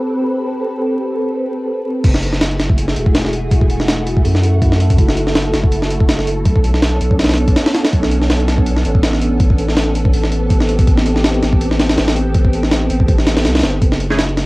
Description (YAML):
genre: drum and bass, jungle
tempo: 163 BPM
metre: 4/4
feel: swing 55% on 16ths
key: F# minor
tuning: A4 = 439 Hz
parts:
  - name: soft string machine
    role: sustained chords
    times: 0.0-14.5 s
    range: A3 to B4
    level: -19 LUFS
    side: equal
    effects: ensemble chorus
  - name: saturated sub bass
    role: bass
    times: 2.0-14.5 s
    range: E1 to F#2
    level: -17 LUFS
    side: equal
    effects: none
  - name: jungle sampler-style drum kit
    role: drums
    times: 2.0-14.5 s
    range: crash cymbal, hi-hat, kick drum, snare drum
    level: -14 LUFS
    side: equal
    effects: cassette tape
  - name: band-passed chord stab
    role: stabs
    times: 14.1-14.2 s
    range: A3 to G#4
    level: -18 LUFS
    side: right 1 dB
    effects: phaser, wide subtle chorus
room: moderate booth ambience, RT60 0.2 s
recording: home recording on cassette, vinyl crackle, lossy compression artefacts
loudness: -12 LUFS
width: side -21 dB against mid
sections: 0.0-2.0 A section; 2.0-14.5 B section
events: drop 2.0-14.5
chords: 0.0 Am9; 2.0 F#m9; 6.5 Bm9; 10.1 Am9; 13.8 F#m9